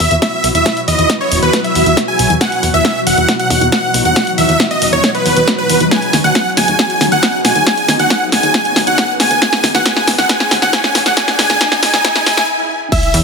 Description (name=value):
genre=uplifting trance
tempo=137 BPM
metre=4/4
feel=straight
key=unclear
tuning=A4 = 440 Hz
part: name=dense compressed supersaw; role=melody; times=0.0-13.2 s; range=B4 to G#5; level=-14 LUFS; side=equal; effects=sidechain pumping, ping-pong delay
part: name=shimmering ambient pad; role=sustained chords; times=0.0-13.2 s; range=B2 to G#4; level=-19 LUFS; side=equal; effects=chorus, built-in reverb, sidechain pumping
part: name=plucky analog bass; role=bass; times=0.0-13.2 s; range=D#1 to E2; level=-19 LUFS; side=equal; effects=tube saturation, sidechain pumping
part: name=electronic kick drum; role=drums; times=0.0-13.0 s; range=none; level=-18 LUFS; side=equal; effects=high-pass filter on kick
part: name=punchy analog drum machine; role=drums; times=0.0-13.2 s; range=crash cymbal, hi-hat, snare drum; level=-15 LUFS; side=equal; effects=none
part: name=riser and sub drop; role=sound effects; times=8.7-13.2 s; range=none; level=-25 LUFS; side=right 1 dB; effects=none
part: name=wide unison pluck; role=second line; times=12.9-13.2 s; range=E5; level=-19 LUFS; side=equal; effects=sidechain pumping
room=moderate lush hall reverb, RT60 2.0 s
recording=high-pass filter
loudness=-10 LUFS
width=side -4 dB against mid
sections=0.0-12.9 A section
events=build-up 0.0-12.9; drum fill 0.0-12.5; riser 8.7-12.5; stop 12.5-12.9; impact 12.9-13.2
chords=0.0 Esus2; 5.9 Badd9/D#